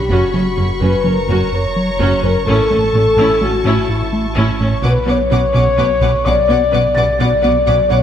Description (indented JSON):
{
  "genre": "cinematic, hybrid orchestral and electronic film score",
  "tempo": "127 BPM",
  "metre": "5/4",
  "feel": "straight",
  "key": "B minor",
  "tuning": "A4 = 440 Hz",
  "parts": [
    { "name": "warm symphonic violin section", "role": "second line", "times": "0.0-8.0 s", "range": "F#5 to D6", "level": "-25 LUFS", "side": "left 1 dB", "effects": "none" },
    { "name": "clear French horn section", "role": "sustained chords", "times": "0.0-8.0 s", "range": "E4 to D5", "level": "-16 LUFS", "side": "left 3 dB", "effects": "none" },
    { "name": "warm sub bass", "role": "bass", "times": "0.0-8.0 s", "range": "F#1 to B1", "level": "-24 LUFS", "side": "right 1 dB", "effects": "none" },
    { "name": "felt-muted upright piano", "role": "texture", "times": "0.0-8.0 s", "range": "D6 to A6", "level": "-30 LUFS", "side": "equal", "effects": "tape echo" },
    { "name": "rich studio viola section", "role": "accompaniment", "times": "0.1-8.0 s", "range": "A3 to B4", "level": "-23 LUFS", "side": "right 2 dB", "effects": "none" },
    { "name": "rubbery square bass", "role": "riff", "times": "0.1-8.0 s", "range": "F#2 to B3", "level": "-18 LUFS", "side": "left 1 dB", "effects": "none" },
    { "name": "rich symphonic cello section", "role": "bass", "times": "0.1-8.0 s", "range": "F#2 to B2", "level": "-23 LUFS", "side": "right 4 dB", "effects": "none" },
    { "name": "rich symphonic double bass section", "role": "bass", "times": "0.1-8.0 s", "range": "F#1 to B1", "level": "-22 LUFS", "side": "right 4 dB", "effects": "none" }
  ],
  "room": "moderate scoring stage reverb, RT60 1.9 s",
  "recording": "none",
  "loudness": "-12 LUFS",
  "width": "side -9 dB against mid",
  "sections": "0.0-8.0 A section",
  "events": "none",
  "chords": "0.1 F#; 2.5 A; 4.8 Bmadd9"
}